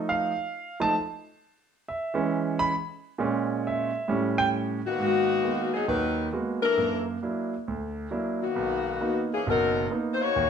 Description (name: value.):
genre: jazz.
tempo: 134 BPM.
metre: 4/4.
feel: swing 65% on 8ths.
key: G# minor.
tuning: A4 = 440 Hz.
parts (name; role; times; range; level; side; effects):
clear concert grand piano; accompaniment; 0.0-10.5 s; F#1 to B5; -27 LUFS; right 3 dB; none.
mellow saxophone section; melody; 4.9-10.5 s; D#3 to C#5; -25 LUFS; left 4 dB; none.
room: moderate large studio reverb, RT60 0.8 s.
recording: none.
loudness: -25 LUFS.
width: side -7 dB against mid.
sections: 0.0-5.0 A section; 5.0-10.5 B section.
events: grand piano solo 0.0-5.0.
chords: 0.0 F7; 1.4 E6; 3.2 A#m7b5; 4.1 A7; 5.0 G#m9; 6.8 F#7b13; 8.6 Bmaj7.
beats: 0.04 0.49 0.94 | 1.39 1.83 2.28 2.73 | 3.18 3.62 4.07 4.52 | 4.97 5.42 5.87 6.32 | 6.76 7.21 7.66 8.11 | 8.56 9.01 9.46 9.91 | 10.36.